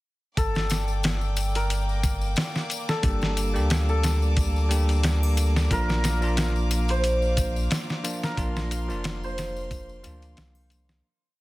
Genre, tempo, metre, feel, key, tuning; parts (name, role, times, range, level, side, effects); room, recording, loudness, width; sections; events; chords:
trip hop; 90 BPM; 4/4; swing 55% on 16ths; G minor; A4 = 440 Hz
santur; melody; 0.4-11.4 s; A4 to C5; -32 LUFS; equal; vintage 12-bit sampler grit, tape echo
clear studio violin section; sustained chords; 0.4-11.0 s; Bb3 to D6; -36 LUFS; left 1 dB; vintage 12-bit sampler grit
soft dub sub bass; bass; 0.4-11.0 s; F1 to D2; -25 LUFS; equal
dusty soul sampler-style drum kit; drums; 0.4-11.0 s; hi-hat, kick drum, snare drum; -27 LUFS; equal; studio reverb
tambourine and triangle; percussion; 0.4-11.0 s; -38 LUFS; left 6 dB
bell-like tine electric piano; accompaniment; 3.0-11.1 s; F3 to G4; -32 LUFS; equal; harmonic tremolo
little or no reverb; dense, heavily limited modern master; -22 LUFS; side -19 dB against mid
0.4-11.0 groove
fade-out 7.5-11.0
0.4 Gm; 5.7 Bb